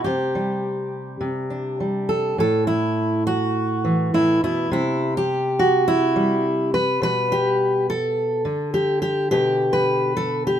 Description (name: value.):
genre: folk, solo fingerstyle acoustic guitar.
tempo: 104 BPM.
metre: 4/4.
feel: straight.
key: unclear.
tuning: A4 = 440 Hz.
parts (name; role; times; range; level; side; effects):
fingerpicked steel-string acoustic guitar; solo; 0.0-10.6 s; A2 to B4; -19 LUFS; equal; none.
room: light reverb.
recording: minimal, uncompressed stereo recording.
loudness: -19 LUFS.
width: side -10 dB against mid.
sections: 0.0-2.4 A section; 2.4-10.6 B section.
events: none.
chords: 0.0 Csus2; 2.4 A5; 4.7 C; 7.0 G/B.